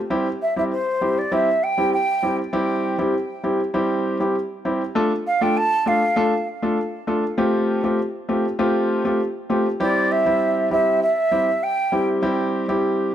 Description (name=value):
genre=afrobeats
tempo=99 BPM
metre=4/4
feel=straight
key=C major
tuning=A4 = 439 Hz
part: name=warm concert grand piano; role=accompaniment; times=0.1-13.1 s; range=G3 to A4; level=-21 LUFS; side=equal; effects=none
part: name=mellow silver concert flute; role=melody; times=0.4-12.1 s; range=C5 to A5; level=-21 LUFS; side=right 1 dB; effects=digital delay
room=light reverb, studio reverb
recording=none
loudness=-18 LUFS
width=side -10 dB against mid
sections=0.1-9.8 A section; 9.8-13.1 B section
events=none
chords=0.1 C; 5.0 Dm; 7.4 Fadd9; 9.8 C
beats=| 0.11 0.71 1.32 1.92 | 2.53 3.14 3.74 4.35 | 4.95 5.56 6.17 6.77 | 7.38 7.99 8.59 9.20 | 9.80 10.41 11.02 11.62 | 12.23 12.83